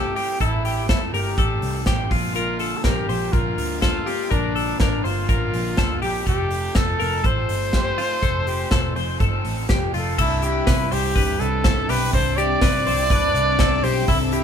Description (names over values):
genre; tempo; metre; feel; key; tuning
jangly indie pop; 123 BPM; 4/4; straight; C major from 10.2 s; A4 = 440 Hz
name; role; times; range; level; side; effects
warm trumpet; melody; 0.0-14.4 s; D4 to D5; -25 LUFS; equal; none
raw garage guitar; accompaniment; 0.0-14.4 s; A2 to F4; -30 LUFS; right 4 dB; overdrive
twelve-string electric guitar; arpeggios; 0.0-14.4 s; F4 to C5; -26 LUFS; left 5 dB; none
vintage muted picked electric bass; bass; 0.0-14.4 s; E1 to C3; -26 LUFS; equal; none
modern studio drum kit; drums; 0.2-14.4 s; crash cymbal, hi-hat, kick drum, snare drum; -23 LUFS; equal; none
string machine, full ensemble; sustained chords; 10.2-14.4 s; C4 to D6; -29 LUFS; left 2 dB; ensemble chorus
warm trumpet; second line; 12.9-13.7 s; C4 to D4; -31 LUFS; right 5 dB; none
room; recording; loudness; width
moderate studio ambience, RT60 0.5 s; band playing live in one room; -18 LUFS; side -8 dB against mid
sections
0.0-10.2 A section; 10.2-14.4 B section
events
none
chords
0.0 Am; 2.1 Bbadd9; 6.3 F; 10.2 Cadd9